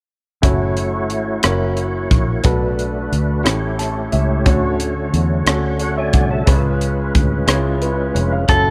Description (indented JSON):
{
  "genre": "slow gospel",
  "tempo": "60 BPM (dotted quarters)",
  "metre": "6/8",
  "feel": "straight",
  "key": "F# minor",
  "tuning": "A4 = 435 Hz",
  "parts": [
    { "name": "warm upright piano", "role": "accompaniment", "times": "0.4-8.7 s", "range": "A2 to A5", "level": "-24 LUFS", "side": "equal", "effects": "none" },
    { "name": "tonewheel organ", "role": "sustained chords", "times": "0.4-8.7 s", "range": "D3 to A5", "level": "-25 LUFS", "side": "equal", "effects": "fast rotary speaker, chorus vibrato" },
    { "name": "fingered electric bass", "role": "bass", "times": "0.4-8.7 s", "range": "E#1 to E2", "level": "-22 LUFS", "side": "equal", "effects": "none" },
    { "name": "crisp fusion drum kit", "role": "drums", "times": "0.4-8.6 s", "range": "hi-hat, kick drum, rim click", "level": "-20 LUFS", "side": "equal", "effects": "none" },
    { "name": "clean electric guitar", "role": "melody", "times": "8.5-8.7 s", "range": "A4", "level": "-16 LUFS", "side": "equal", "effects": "none" }
  ],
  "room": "small room ambience",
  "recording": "none",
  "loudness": "-18 LUFS",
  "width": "mono",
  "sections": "0.4-8.5 A section",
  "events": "upright piano fill 3.5-4.5",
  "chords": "0.4 F#m7; 1.4 F#7; 2.4 Bm7; 3.5 A7; 4.5 Dmaj7; 6.5 C#7"
}